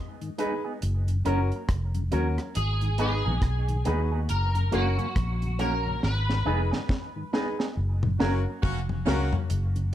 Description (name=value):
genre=roots reggae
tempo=69 BPM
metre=4/4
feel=swing 60% on 16ths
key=F# major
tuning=A4 = 439 Hz
part: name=electric guitar at the edge of break-up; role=melody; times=0.0-7.7 s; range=F#4 to D#5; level=-32 LUFS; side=left 1 dB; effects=ensemble chorus, dub echo
part: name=mellow tonewheel organ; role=accompaniment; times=0.2-9.8 s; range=F#2 to D#4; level=-36 LUFS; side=left 2 dB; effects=chorus vibrato, slow rotary speaker, dub echo
part: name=deep reggae drum kit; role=drums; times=0.2-9.9 s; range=hi-hat, kick drum, rim click, snare drum, toms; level=-29 LUFS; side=equal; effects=none
part: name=electric guitar with an envelope filter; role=accompaniment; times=0.4-9.2 s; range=A#3 to A#4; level=-35 LUFS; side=right 5 dB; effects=dub echo
part: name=clear upright piano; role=stabs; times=0.4-9.3 s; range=C#4 to B4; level=-31 LUFS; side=left 2 dB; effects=none
part: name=vintage muted fingered electric bass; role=bass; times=0.8-9.9 s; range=E#1 to D#2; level=-26 LUFS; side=equal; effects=none
part: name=clear horn section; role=second line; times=8.2-9.3 s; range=A#3 to F#4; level=-35 LUFS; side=equal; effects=dub echo
room=light reverb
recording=none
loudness=-24 LUFS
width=side -12 dB against mid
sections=0.0-9.5 A section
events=drum fill 6.0-9.5; band accent 6.0-9.5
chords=0.0 G#m; 0.8 F#; 2.6 G#m; 4.3 F#; 6.0 G#m; 7.8 F#